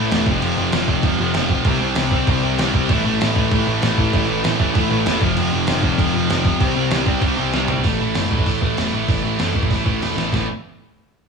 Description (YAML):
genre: punk rock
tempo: 194 BPM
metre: 4/4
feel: straight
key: unclear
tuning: A4 = 440 Hz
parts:
  - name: crunchy overdriven guitar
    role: riff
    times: 0.0-7.9 s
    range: F2 to C4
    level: -24 LUFS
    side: equal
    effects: none
  - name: sludgy distorted guitar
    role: riff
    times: 0.0-10.5 s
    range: F2 to C4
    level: -22 LUFS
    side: left 6 dB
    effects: overdrive
  - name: tight distorted guitar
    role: riff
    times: 0.0-10.5 s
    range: F2 to C4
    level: -22 LUFS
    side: right 8 dB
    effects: distortion
  - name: growling picked electric bass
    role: bass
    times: 0.0-10.5 s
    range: E1 to C2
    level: -25 LUFS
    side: right 2 dB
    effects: overdrive
  - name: boom bap sampler-style drum kit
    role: drums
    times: 0.1-10.4 s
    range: crash cymbal, hi-hat, kick drum, snare drum, toms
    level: -21 LUFS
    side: right 1 dB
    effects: overdrive
room: light reverb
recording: band playing live in one room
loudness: -16 LUFS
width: side -5 dB against mid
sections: 0.0-7.8 A section; 7.8-10.3 B section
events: drum fill 7.5-7.8, 10.0-10.3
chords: 0.3 F5; 1.7 C5; 2.9 A5; 5.2 F5; 6.6 C5; 7.8 A5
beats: 0.11 | 0.42 0.73 1.04 1.35 | 1.66 1.97 2.28 2.59 | 2.90 3.21 3.52 3.83 | 4.13 4.44 4.75 5.06 | 5.37 5.68 5.99 6.29 | 6.60 6.91 7.22 7.53 | 7.84 8.15 8.46 8.77 | 9.09 9.40 9.71 10.02 | 10.33